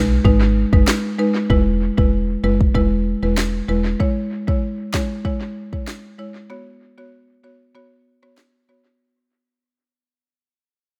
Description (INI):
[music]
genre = dancehall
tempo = 96 BPM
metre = 4/4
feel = straight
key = unclear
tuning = A4 = 440 Hz
[part]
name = buzzing marimba with medium mallets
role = accompaniment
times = 0.0-8.9 s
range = G#3 to C#5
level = -23 LUFS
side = equal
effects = none
[part]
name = woody FM bass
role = bass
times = 0.0-4.0 s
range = E1 to B1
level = -22 LUFS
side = equal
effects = none
[part]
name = afro-pop drum kit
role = drums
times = 0.2-8.5 s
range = handclaps, kick drum, rim click, snare drum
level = -21 LUFS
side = equal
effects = analog delay
[sound]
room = little or no reverb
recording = echo-heavy mix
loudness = -19 LUFS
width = mono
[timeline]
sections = 0.0-9.0 A section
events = fade-out 0.0-9.0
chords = 0.0 G#m; 1.5 E; 4.0 C#m; 6.5 F#sus4